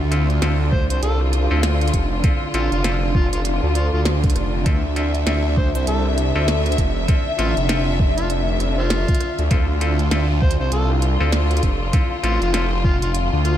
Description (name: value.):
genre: glitch hop.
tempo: 99 BPM.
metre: 4/4.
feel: swing 60% on 16ths.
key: D minor.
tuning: A4 = 440 Hz.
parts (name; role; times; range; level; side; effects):
warm studio string section; sustained chords; 0.0-13.6 s; D3 to E5; -25 LUFS; left 1 dB; vintage 12-bit sampler grit, sidechain pumping.
phased detuned saw bass; bass; 0.0-13.6 s; F1 to D2; -19 LUFS; equal; phaser.
clav; stabs; 0.1-12.7 s; C4 to A4; -30 LUFS; left 1 dB; sidechain pumping, diffuse ambient delay.
glitchy drum kit; drums; 0.1-13.6 s; hi-hat, rim click, snare drum; -29 LUFS; right 1 dB; none.
overdriven harmonica; melody; 0.7-13.6 s; C4 to C5; -29 LUFS; left 1 dB; diffuse ambient delay.
electronic kick drum; drums; 0.7-13.0 s; none; -19 LUFS; equal; overdrive.
room: light reverb, digital ambience.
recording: none.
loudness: -17 LUFS.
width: side -11 dB against mid.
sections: 0.0-13.6 A section.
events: none.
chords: 0.0 Dm7.